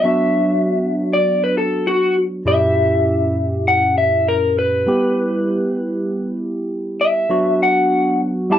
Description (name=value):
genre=blues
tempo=99 BPM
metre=4/4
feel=swing 56% on 16ths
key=B minor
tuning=A4 = 441 Hz
part: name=electric guitar through a small old amp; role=melody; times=0.0-8.6 s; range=F#4 to A5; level=-17 LUFS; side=left 2 dB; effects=none
part: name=barky tine electric piano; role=accompaniment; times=0.0-8.6 s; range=F#2 to G4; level=-19 LUFS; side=right 1 dB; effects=phaser
room=moderate booth ambience, RT60 0.2 s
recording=dry, close 1970s-style studio recording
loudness=-15 LUFS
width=side -10 dB against mid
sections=0.0-8.6 A section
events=clean electric guitar solo 0.0-8.6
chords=0.0 Bm; 2.5 F#7b9; 4.9 Em; 7.3 Bm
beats=| 0.04 0.65 1.25 1.86 | 2.46 3.07 3.67 4.28 | 4.88 5.49 6.09 6.70 | 7.30 7.91 8.51